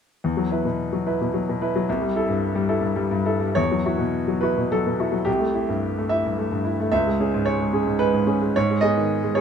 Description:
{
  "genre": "neoclassical minimalist piano",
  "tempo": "109 BPM",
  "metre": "3/4",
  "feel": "rubato",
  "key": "unclear",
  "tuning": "A4 = 439 Hz",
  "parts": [
    { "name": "clear grand piano", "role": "solo", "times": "0.2-9.4 s", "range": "C2 to E5", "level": "-20 LUFS", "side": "equal", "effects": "none" }
  ],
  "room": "moderate small room ambience, RT60 0.5 s",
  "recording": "minimal, uncompressed stereo recording",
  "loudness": "-20 LUFS",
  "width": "side -7 dB against mid",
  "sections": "0.2-3.6 A section; 3.6-9.4 B section",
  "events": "none",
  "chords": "0.2 Esus2; 1.9 C6; 3.6 Esus2; 5.3 C6; 6.9 C#m; 8.6 G#m"
}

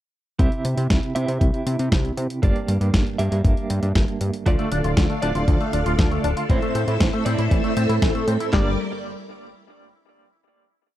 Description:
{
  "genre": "italo disco",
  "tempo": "118 BPM",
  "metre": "4/4",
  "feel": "straight",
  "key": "G dorian",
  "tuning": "A4 = 440 Hz",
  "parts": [
    { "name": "direct-recorded clean electric guitar", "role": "stabs", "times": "0.4-8.7 s", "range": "G2 to E5", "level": "-27 LUFS", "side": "right 3 dB", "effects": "tremolo, low-pass filter, tape echo" },
    { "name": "fat analog bass", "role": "bass", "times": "0.4-8.8 s", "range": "D1 to C3", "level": "-24 LUFS", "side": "equal", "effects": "tape echo" },
    { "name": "clean 12-bit digital drum machine", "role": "drums", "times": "0.4-8.5 s", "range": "hi-hat, snare drum", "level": "-26 LUFS", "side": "equal", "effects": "none" },
    { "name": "dusty soul sampler-style drum kit", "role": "drums", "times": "0.4-8.6 s", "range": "handclaps, kick drum, snare drum", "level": "-20 LUFS", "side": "equal", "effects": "overdrive" },
    { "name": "string machine, full ensemble", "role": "sustained chords", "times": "4.5-8.8 s", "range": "G3 to E6", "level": "-27 LUFS", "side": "equal", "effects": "phaser, ensemble chorus, vintage 12-bit sampler grit" },
    { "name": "electric guitar with an envelope filter", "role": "arpeggios", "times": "4.5-8.8 s", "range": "E3 to F4", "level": "-27 LUFS", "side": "left 3 dB", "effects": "analog chorus, tape echo" }
  ],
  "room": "little or no reverb",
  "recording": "dry, close 1970s-style studio recording",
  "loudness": "-19 LUFS",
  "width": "side -13 dB against mid",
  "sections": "0.4-8.5 verse; 8.5-10.6 final chord",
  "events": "filter sweep on clean electric guitar 0.4-8.5",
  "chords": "0.4 C; 2.4 Gm; 4.5 Dm; 6.5 Am; 8.5 Gm"
}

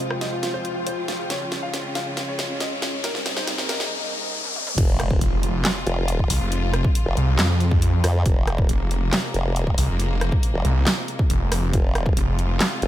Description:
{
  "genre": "heavy wobble dubstep",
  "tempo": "138 BPM",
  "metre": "4/4",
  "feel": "half-time",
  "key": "F minor",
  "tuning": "A4 = 440 Hz",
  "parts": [
    { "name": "clear baby grand piano", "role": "melody", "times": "0.0-3.9 s", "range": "C4 to F5", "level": "-31 LUFS", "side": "equal", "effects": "digital delay" },
    { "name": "rich symphonic string section", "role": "sustained chords", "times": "0.0-12.9 s", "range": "C3 to F4", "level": "-31 LUFS", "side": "left 1 dB", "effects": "sidechain pumping" },
    { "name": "dubstep drum kit", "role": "drums", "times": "0.0-12.9 s", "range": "crash cymbal, handclaps, hi-hat, rim click, snare drum, toms", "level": "-26 LUFS", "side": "equal", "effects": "high-pass filter on hats, high-pass filter on snare, high-pass filter on toms, high-pass filter on cymbals" },
    { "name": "riser and impact", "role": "sound effects", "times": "0.1-6.5 s", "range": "none", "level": "-30 LUFS", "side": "left 1 dB", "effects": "none" },
    { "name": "granular cloud pad", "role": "texture", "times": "0.0-3.9 s", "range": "Db4 to G5", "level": "-34 LUFS", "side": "left 1 dB", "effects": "built-in reverb, sidechain pumping" },
    { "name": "formant-sweep wobble bass", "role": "bass", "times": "4.8-12.9 s", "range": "F1 to F2", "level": "-22 LUFS", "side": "equal", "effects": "chorus, overdrive" },
    { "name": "electronic kick drum", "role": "drums", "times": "4.8-12.1 s", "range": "none", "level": "-21 LUFS", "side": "equal", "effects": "none" },
    { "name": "snarling distorted saw bass", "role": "bass", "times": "5.2-12.6 s", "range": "F1 to F2", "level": "-21 LUFS", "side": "equal", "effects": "distortion, overdrive" }
  ],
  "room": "little or no reverb",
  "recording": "high-pass filter",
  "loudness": "-20 LUFS",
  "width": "side -13 dB against mid",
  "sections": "0.0-4.8 A section; 4.8-12.9 B section",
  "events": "build-up 0.0-4.8; drum fill 0.0-3.9, 4.5-4.8; filter sweep 0.0-4.8; riser 0.1-4.8; break 3.9-4.8; drop 4.8-12.9; impact 4.8-6.5",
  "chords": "0.0 Fm; 1.3 Db; 3.0 Cm7; 4.8 Fm"
}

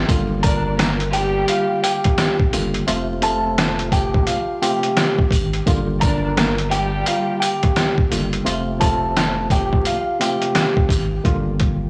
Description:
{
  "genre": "hip hop, boom-bap hip-hop",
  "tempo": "86 BPM",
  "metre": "4/4",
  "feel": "swing 61% on 16ths",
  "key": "G minor",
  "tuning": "A4 = 441 Hz",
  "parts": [
    { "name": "sub bass with octave", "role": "bass", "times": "0.0-11.9 s", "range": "F1 to Ab1", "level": "-27 LUFS", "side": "equal", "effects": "transformer saturation" },
    { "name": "tine electric piano", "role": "accompaniment", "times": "0.1-11.9 s", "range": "C3 to F4", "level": "-27 LUFS", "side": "equal", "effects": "overdrive, cassette tape, high-pass filter, low-pass filter" },
    { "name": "trip hop sampler-style drum kit", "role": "drums", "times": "0.1-11.8 s", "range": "hi-hat, kick drum, rim click, snare drum", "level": "-22 LUFS", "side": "equal", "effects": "overdrive, vintage 12-bit sampler grit" },
    { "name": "sleigh bells", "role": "percussion", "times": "0.1-11.1 s", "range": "none", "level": "-35 LUFS", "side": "equal", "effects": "none" },
    { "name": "mellow electric guitar", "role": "melody", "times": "0.4-10.7 s", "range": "F4 to Bb5", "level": "-25 LUFS", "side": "equal", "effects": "spring reverb, high-pass filter, low-pass filter, tape echo" },
    { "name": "rich studio string section", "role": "stabs", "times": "0.4-1.8, 6.0-7.4 s", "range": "G3 to D5", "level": "-28 LUFS", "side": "equal", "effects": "high-pass filter, low-pass filter, tape echo" }
  ],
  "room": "light reverb",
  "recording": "blown-out, overdriven recording, vinyl crackle, overdrive, small room ambience",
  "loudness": "-19 LUFS",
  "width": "mono",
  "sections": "0.0-11.2 A section",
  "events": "none",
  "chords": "0.1 Gm7; 2.9 F; 5.7 Gm7; 8.5 F; 11.2 Gm7"
}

